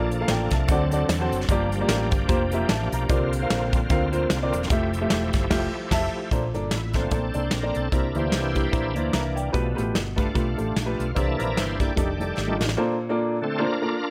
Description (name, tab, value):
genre	uptempo gospel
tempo	149 BPM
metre	4/4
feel	swing 57% on 8ths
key	unclear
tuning	A4 = 441 Hz
part	warm upright piano	accompaniment	0.0-13.9 s	G2 to Bb5	-29 LUFS	equal	none
part	bright tonewheel organ	sustained chords	0.0-14.1 s	D3 to D5	-32 LUFS	equal	slow rotary speaker, overdrive, chorus vibrato
part	hollow-body short-scale fingered electric bass	bass	0.0-12.8 s	E1 to E2	-30 LUFS	equal	none
part	soft brush drum kit	drums	0.1-12.8 s	crash cymbal, hi-hat, kick drum, snare drum	-28 LUFS	equal	none
room	light reverb, small room reverb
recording	none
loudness	-24 LUFS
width	mono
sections	0.0-6.3 A section; 6.3-12.8 B section; 12.8-14.1 A section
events	band accent 5.5-6.3; tonewheel organ solo 6.3-12.8, 12.8-14.1; drum fill 12.4-12.8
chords	0.0 Bbmaj7; 0.7 D7; 1.5 Gm7; 3.1 C9sus4; 4.7 Fmaj9; 6.3 Bbmaj9; 7.9 C9; 9.5 G9; 11.2 C9; 12.0 F13; 12.8 Bbmaj9